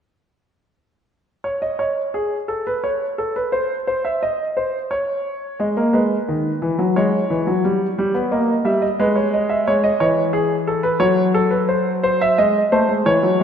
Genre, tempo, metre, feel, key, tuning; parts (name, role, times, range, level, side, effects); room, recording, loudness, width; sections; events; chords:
classical, baroque-style two-part invention for grand piano; 88 BPM; 3/4; straight; A4 = 440 Hz
clear grand piano; solo; 1.4-13.4 s; D#3 to E5; -17 LUFS; equal
wet scoring stage reverb, RT60 1.9 s; dark, warm production; -17 LUFS; side -8 dB against mid
1.4-13.4 A section
1.4 N.C.; 5.6 G#m; 7.0 C#m/G#; 7.7 D#7/G; 9.0 G#m; 9.7 C#m; 11.0 F#m; 11.7 G#7/F#